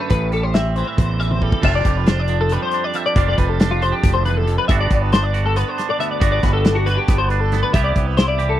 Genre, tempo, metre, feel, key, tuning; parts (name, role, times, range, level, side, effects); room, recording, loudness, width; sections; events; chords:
math rock and midwest emo; 275 BPM (eighths); 7/8; straight; A4 = 444 Hz
twangy electric guitar; accompaniment; 0.0-8.6 s; D2 to G4; -23 LUFS; right 10 dB
twelve-string electric guitar; arpeggios; 0.0-8.6 s; F4 to E5; -21 LUFS; left 5 dB; ensemble chorus
growling fingered electric bass; bass; 0.1-8.6 s; F1 to C2; -20 LUFS; equal; overdrive
loose indie drum kit; drums; 0.1-8.5 s; crash cymbal, hi-hat, kick drum, snare drum, toms; -18 LUFS; equal
studio ambience; dry, close 1970s-style studio recording; -15 LUFS; side -12 dB against mid
0.0-1.6 A section; 1.6-8.6 B section
drum fill 1.3-1.6
0.1 Am7; 1.6 F69; 4.7 Gmaj7; 7.7 Cmaj7